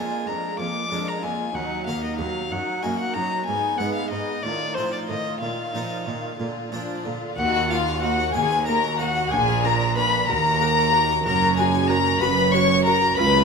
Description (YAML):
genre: classical, baroque-style concerto movement with solo episodes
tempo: 62 BPM (dotted quarters)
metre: 6/8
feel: straight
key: Eb minor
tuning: A4 = 438 Hz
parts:
  - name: warm chamber violin section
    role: melody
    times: 0.0-13.4 s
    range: Gb4 to Db6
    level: -29 LUFS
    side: left 3 dB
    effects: none
  - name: warm violin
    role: melody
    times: 0.0-13.4 s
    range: C5 to D6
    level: -24 LUFS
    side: left 4 dB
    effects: none
  - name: dark chamber violin section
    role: second line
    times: 0.0-13.4 s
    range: Cb4 to Db5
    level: -27 LUFS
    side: left 4 dB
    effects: none
  - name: dark chamber viola section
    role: accompaniment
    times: 0.0-13.3 s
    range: D3 to Gb4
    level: -32 LUFS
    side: right 2 dB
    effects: none
  - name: harpsichord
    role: accompaniment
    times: 0.0-13.4 s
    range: Db2 to C5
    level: -33 LUFS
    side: right 2 dB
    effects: none
  - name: warm chamber cello section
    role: bass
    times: 0.0-13.4 s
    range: Db2 to Bb2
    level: -27 LUFS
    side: right 6 dB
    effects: none
  - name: rich studio double bass section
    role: bass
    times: 7.4-13.4 s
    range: Gb1 to Eb2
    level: -28 LUFS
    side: right 6 dB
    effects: none
room: wet recital hall reverb, RT60 1.4 s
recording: none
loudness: -20 LUFS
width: side -5 dB against mid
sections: 0.0-7.4 A section; 7.4-13.4 B section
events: none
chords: 0.0 Bb7/F; 1.6 Ebm; 2.5 Ebm/Gb; 3.5 Abm; 4.4 F7/A; 5.4 Bbsus4; 6.4 Bb; 7.4 Ebm; 9.3 Bb; 10.3 Ebm; 11.2 Gb